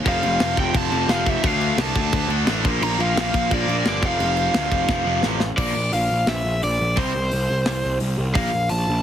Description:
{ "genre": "punk rock", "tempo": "174 BPM", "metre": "4/4", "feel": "straight", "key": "F major", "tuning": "A4 = 440 Hz", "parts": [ { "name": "crunchy overdriven guitar", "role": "riff", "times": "0.0-8.5 s", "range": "F2 to D4", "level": "-27 LUFS", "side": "left 18 dB", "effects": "none" }, { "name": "overdriven electric guitar", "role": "melody", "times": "0.1-9.0 s", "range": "C5 to Bb5", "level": "-24 LUFS", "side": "equal", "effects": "digital delay" }, { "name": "overdriven electric guitar", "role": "riff", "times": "0.1-8.5 s", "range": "F2 to D4", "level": "-26 LUFS", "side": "right 15 dB", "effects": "none" }, { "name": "fuzz picked electric bass", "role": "bass", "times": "0.1-9.0 s", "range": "F1 to D2", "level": "-24 LUFS", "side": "equal", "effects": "overdrive" }, { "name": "tight metal drum kit", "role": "drums", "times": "0.1-8.8 s", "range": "crash cymbal, hi-hat, kick drum, snare drum", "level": "-25 LUFS", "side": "equal", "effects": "none" } ], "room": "little or no reverb", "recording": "heavily compressed radio sound, multiband compression", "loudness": "-18 LUFS", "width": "side -10 dB against mid", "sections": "0.0-5.6 A section; 5.6-9.0 B section", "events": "drum fill 4.9-5.6; half time 5.6-9.0", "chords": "0.1 F; 1.4 Dm; 2.6 Bb; 4.0 F; 5.6 Bb; 7.0 C5; 8.3 Bb5", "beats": "| 0.06 0.40 0.75 1.09 | 1.44 1.78 2.13 2.47 | 2.81 3.16 3.50 3.85 | 4.19 4.54 4.88 5.23 | 5.58 5.92 6.27 6.62 | 6.96 7.31 7.66 8.00 | 8.35 8.69" }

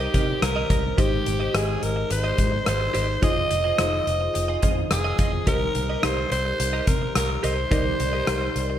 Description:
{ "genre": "1980s-style pop", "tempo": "107 BPM", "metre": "4/4", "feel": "straight", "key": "C minor", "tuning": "A4 = 440 Hz", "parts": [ { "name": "raspy alto saxophone", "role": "melody", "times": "0.0-8.8 s", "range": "G4 to Eb5", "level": "-26 LUFS", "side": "equal", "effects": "none" }, { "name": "FM electric piano with soft pad layer", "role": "accompaniment", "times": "0.0-8.8 s", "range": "Ab3 to Eb5", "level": "-30 LUFS", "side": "left 1 dB", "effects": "chorus" }, { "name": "direct-recorded clean electric guitar", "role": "riff", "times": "0.0-8.7 s", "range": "F4 to Eb5", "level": "-33 LUFS", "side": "right 4 dB", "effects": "analog chorus, digital delay" }, { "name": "vintage muted fingered electric bass", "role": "bass", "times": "0.0-8.8 s", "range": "F1 to C3", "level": "-27 LUFS", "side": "equal", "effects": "none" }, { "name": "big rock drum kit", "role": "drums", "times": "0.1-8.7 s", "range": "hi-hat, kick drum, rim click", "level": "-25 LUFS", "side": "equal", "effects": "gated reverb" } ], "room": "moderate lush hall reverb, RT60 2.1 s", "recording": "bright 1980s-style digital production", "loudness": "-20 LUFS", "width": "side -10 dB against mid", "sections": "0.0-8.8 A section", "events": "none", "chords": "0.0 Cm7; 1.0 Abmaj7; 3.2 Fm7; 5.5 Cm7", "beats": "0.43 | 0.99 1.55 2.11 2.67 | 3.23 3.79 4.35 4.91 | 5.47 6.03 6.59 7.16 | 7.72 8.28" }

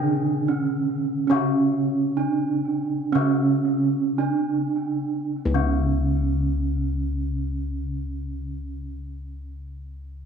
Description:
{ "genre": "Javanese gamelan", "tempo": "50-79 BPM", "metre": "4/4", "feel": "straight", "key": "unclear", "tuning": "A4 = 439 Hz", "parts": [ { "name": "gamelan-type bronze metallophone", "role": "melody", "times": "0.0-8.9 s", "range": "C#4 to D4+50c", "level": "-24 LUFS", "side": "right 6 dB", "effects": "tape echo" }, { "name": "gamelan-type bronze metallophone", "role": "accompaniment", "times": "0.0-8.9 s", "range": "C#3 to D3+50c", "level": "-30 LUFS", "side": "left 9 dB", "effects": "none" }, { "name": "gamelan-type bossed gongs", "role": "bass", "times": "0.0-8.8 s", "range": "C#2 to A#4+20c", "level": "-27 LUFS", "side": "left 1 dB", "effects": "none" } ], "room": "moderate echo chamber reverb, RT60 1.8 s, small room ambience", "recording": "1960s-style stereo with parts hard left and right", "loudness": "-21 LUFS", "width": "side -7 dB against mid", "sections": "0.0-5.3 A section; 5.3-10.1 B section", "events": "slowing down 0.0-5.3", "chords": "none", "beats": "0.48 | 1.30 2.19 3.14 4.18 | 5.33 6.53 7.72 8.92" }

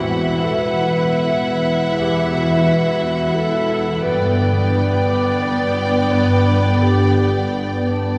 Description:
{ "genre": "cinematic", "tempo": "87 BPM", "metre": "3/4", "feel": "rubato", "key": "unclear", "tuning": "A4 = 440 Hz", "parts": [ { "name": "rich studio violin section", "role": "melody", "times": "0.0-8.2 s", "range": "F#5 to G5", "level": "-30 LUFS", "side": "equal", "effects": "none" }, { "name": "mellow clarinet", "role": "second line", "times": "0.0-8.2 s", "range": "D4 to D5", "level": "-25 LUFS", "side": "equal", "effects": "none" }, { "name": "rich studio violin section", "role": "second line", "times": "0.0-8.2 s", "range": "D5 to E5", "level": "-27 LUFS", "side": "equal", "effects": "none" }, { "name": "rich studio viola section", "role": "accompaniment", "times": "0.0-8.2 s", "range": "B3 to E4", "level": "-28 LUFS", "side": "equal", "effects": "none" }, { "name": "dark French horn section", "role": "sustained chords", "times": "0.0-8.2 s", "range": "D3 to B3", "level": "-26 LUFS", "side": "equal", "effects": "none" }, { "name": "concert harp", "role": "arpeggios", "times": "0.0-8.2 s", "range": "E2 to F#5", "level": "-26 LUFS", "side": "equal", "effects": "none" }, { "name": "clear studio cello section", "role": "bass", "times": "0.0-8.2 s", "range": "E2 to G2", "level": "-25 LUFS", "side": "equal", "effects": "none" }, { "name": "rich studio double bass section", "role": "bass", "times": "0.0-8.2 s", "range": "E1 to G1", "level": "-27 LUFS", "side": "equal", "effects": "none" } ], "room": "wet cathedral reverb, RT60 4.3 s", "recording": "recorded in a church or concert hall, studio ambience", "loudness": "-18 LUFS", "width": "mono", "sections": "0.0-8.2 A section", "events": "none", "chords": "0.0 Esus2; 4.0 G", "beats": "0.61 1.30 | 1.99 2.67 3.35 | 4.04 4.74 5.43 | 6.13 6.82 7.52" }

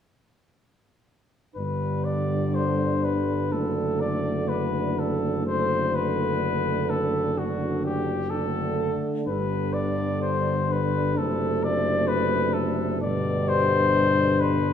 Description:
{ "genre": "classical, hymn-like piece for brass band", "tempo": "63 BPM", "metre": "4/4", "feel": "rubato", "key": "G major", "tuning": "A4 = 440 Hz", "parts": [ { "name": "warm flugelhorn", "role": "melody", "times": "1.6-14.7 s", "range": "F#4 to D5", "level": "-27 LUFS", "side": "left 5 dB", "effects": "none" }, { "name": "mellow French horn section", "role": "second line", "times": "1.6-14.7 s", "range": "D4", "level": "-32 LUFS", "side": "equal", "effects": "none" }, { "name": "mellow euphonium", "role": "accompaniment", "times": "1.6-14.6 s", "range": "G3 to A3", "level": "-31 LUFS", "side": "right 1 dB", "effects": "none" }, { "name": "warm trombone", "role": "accompaniment", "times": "1.6-14.6 s", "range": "B2 to D3", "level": "-31 LUFS", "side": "right 4 dB", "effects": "none" }, { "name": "mellow tuba", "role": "bass", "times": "1.6-14.7 s", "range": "F#1 to G1", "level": "-28 LUFS", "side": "equal", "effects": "none" } ], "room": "moderate scoring stage reverb, RT60 1.9 s", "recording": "none", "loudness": "-22 LUFS", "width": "side -8 dB against mid", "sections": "1.6-14.7 A section", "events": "none", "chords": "1.6 G5; 3.5 D/F#; 9.3 G5; 11.2 D7/F#; 13.0 G", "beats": "| 1.57 2.55 3.52 4.50 | 5.46 6.42 7.38 8.32 | 9.27 10.24 11.19 12.09 | 13.02 13.95" }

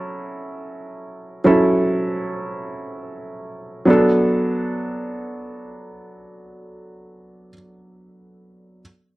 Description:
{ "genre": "dancehall", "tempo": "free time", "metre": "none", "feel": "none", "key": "B minor", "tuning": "A4 = 437 Hz", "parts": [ { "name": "warm grand piano", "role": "accompaniment", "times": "0.0-8.8 s", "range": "F#3 to A4", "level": "-19 LUFS", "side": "right 1 dB", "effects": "none" } ], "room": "little or no reverb", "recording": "dry, gritty hardware recording", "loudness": "-17 LUFS", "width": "side -19 dB against mid", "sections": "0.0-3.9 A section; 3.9-6.3 B section", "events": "none", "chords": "0.0 F#m7; 3.9 Bm7", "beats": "free time" }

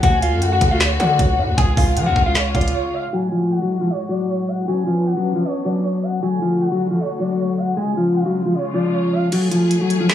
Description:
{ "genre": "hip hop, trap", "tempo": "155 BPM", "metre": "4/4", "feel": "half-time", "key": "F# harmonic minor", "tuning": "A4 = 440 Hz", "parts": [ { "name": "mellow electric guitar", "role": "melody", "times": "0.0-10.1 s", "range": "E#3 to G#5", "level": "-19 LUFS", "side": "left 2 dB", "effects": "low-pass filter, tape echo" }, { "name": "gliding portamento lead", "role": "second line", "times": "0.0-9.3 s", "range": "C#5 to G#5", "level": "-27 LUFS", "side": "right 4 dB", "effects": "chorus, tape echo" }, { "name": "rich symphonic string section", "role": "sustained chords", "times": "0.0-10.1 s", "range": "A2 to G#4", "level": "-26 LUFS", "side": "left 2 dB", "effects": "none" }, { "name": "distorted 808-style bass", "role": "bass", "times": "0.0-2.7 s", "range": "C#2 to E#3", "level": "-20 LUFS", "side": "equal", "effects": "distortion" }, { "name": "trap drum kit", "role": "drums", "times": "0.0-10.1 s", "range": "crash cymbal, handclaps, hi-hat, kick drum, snare drum", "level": "-19 LUFS", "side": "equal", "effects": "none" } ], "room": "light reverb", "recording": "low-pass filter, studio reverb", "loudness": "-16 LUFS", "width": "side -10 dB against mid", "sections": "0.0-3.1 A section; 3.1-9.3 B section", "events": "break 2.7-3.1; filter sweep 3.1-9.3; kick muted 9.3-10.1", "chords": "0.0 D; 1.6 C#; 3.1 F#madd9; 4.7 Bmadd9; 6.2 D; 7.8 C#; 9.3 F#madd9", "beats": "| 0.03 0.42 0.81 1.19 | 1.58 1.97 2.35 2.74 | 3.13 3.51 3.90 4.29 | 4.68 5.06 5.45 5.84 | 6.22 6.61 7.00 7.38 | 7.77 8.16 8.55 8.93 | 9.32 9.71 10.10" }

